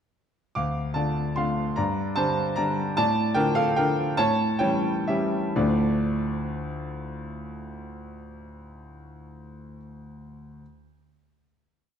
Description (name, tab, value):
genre	classical, piano waltz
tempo	115-160 BPM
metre	3/4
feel	rubato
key	D minor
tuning	A4 = 439 Hz
part	bright grand piano	solo	0.6-10.6 s	D2 to D6	-24 LUFS	equal	none
room	moderate scoring stage reverb, RT60 1.5 s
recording	dark, warm production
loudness	-23 LUFS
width	side -8 dB against mid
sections	0.6-5.6 A section; 5.6-8.5 final chord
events	slowing down 2.4-5.6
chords	0.6 Dm; 1.8 Gm; 3.0 Dm/A; 4.2 A7; 5.6 Dm